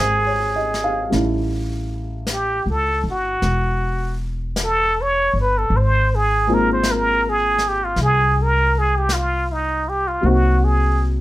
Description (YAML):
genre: jazz ballad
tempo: 53 BPM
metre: 4/4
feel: swing 68% on 8ths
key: Ab major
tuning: A4 = 442 Hz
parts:
  - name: trumpet with plunger mute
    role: melody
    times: 0.0-11.0 s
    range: Eb4 to C#5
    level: -19 LUFS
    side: right 1 dB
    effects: none
  - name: dark upright piano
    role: accompaniment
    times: 0.0-11.2 s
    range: Gb3 to F5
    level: -23 LUFS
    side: left 1 dB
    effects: none
  - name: upright bass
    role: bass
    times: 0.0-11.2 s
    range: E1 to C#2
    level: -21 LUFS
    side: equal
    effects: none
  - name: jazz brush drum kit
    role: drums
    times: 0.7-11.2 s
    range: brushed snare drum, hi-hat, snare drum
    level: -29 LUFS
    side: left 2 dB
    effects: none
room: light reverb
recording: none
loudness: -17 LUFS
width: side -16 dB against mid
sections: 0.0-11.2 A section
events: none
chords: 0.0 Bbm7; 1.1 A7#11; 5.7 Ab69; 10.2 Cm7b5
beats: | 1.11 2.26 3.42 4.56 | 5.70 6.83 7.96 9.10 | 10.23